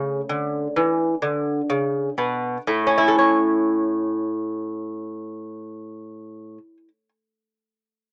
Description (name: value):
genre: classical, baroque-style dance for lute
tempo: 64 BPM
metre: 4/4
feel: rubato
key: A major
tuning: A4 = 438 Hz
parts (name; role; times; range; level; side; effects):
- lute; solo; 0.0-7.1 s; A2 to C#5; -23 LUFS; equal; none
room: little or no reverb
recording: dry, gritty hardware recording, small speaker sound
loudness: -22 LUFS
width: mono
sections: 0.0-2.7 A section; 2.7-6.4 B section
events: slowing down 0.0-2.7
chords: 0.0 A